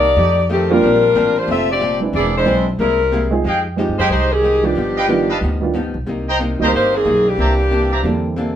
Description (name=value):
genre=jazz, big band swing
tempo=183 BPM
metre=4/4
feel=swing 62% on 8ths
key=unclear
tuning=A4 = 440 Hz
part: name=warm saxophone section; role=melody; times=0.0-8.3 s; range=Eb3 to E5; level=-16 LUFS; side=left 1 dB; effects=none
part: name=archtop guitar, miked and amplified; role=accompaniment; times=0.0-8.6 s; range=G2 to G#4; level=-24 LUFS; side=left 2 dB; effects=none
part: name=upright bass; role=bass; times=0.0-8.6 s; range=E1 to G2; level=-21 LUFS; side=equal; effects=none
part: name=warm baby grand piano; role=accompaniment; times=0.7-8.5 s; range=D3 to Ab4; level=-19 LUFS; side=right 4 dB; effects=none
part: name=brilliant trumpet section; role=stabs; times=3.5-8.0 s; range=Ab4 to Bb5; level=-20 LUFS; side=equal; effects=none
room=wet studio reverb, RT60 0.6 s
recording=band playing live in one room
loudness=-14 LUFS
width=side -10 dB against mid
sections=0.0-3.4 A section; 3.4-8.6 B section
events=none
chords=0.2 F9; 0.8 Bb69; 2.1 E7b13; 2.8 C7b13; 3.4 Fm9; 4.8 G7b13; 6.1 Cm7; 7.4 C9